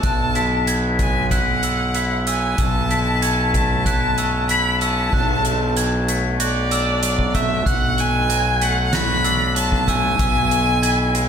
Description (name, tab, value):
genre	post-rock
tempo	95 BPM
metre	4/4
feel	straight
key	B dorian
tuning	A4 = 439 Hz
part	clear violin	melody	0.0-11.3 s	D5 to B5	-22 LUFS	equal	ping-pong delay
part	glockenspiel with brass mallets	arpeggios	0.0-11.3 s	E6 to G#6	-25 LUFS	right 3 dB	ping-pong delay
part	twangy electric guitar	arpeggios	0.0-11.3 s	B2 to F#4	-26 LUFS	left 3 dB	wide subtle chorus, ping-pong delay
part	fuzz fingered electric bass	bass	0.0-11.3 s	B1	-21 LUFS	equal	overdrive
part	soft-mallet drum kit	drums	0.0-11.3 s	crash cymbal, hi-hat, kick drum, snare drum	-24 LUFS	equal	none
room	moderate plate reverb, RT60 2.0 s, small room ambience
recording	dreamy mix soaked in reverb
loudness	-16 LUFS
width	side -7 dB against mid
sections	0.0-5.1 A section; 5.1-11.3 B section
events	none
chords	0.0 E/B; 2.6 A/B; 5.1 Bm7; 10.2 E/B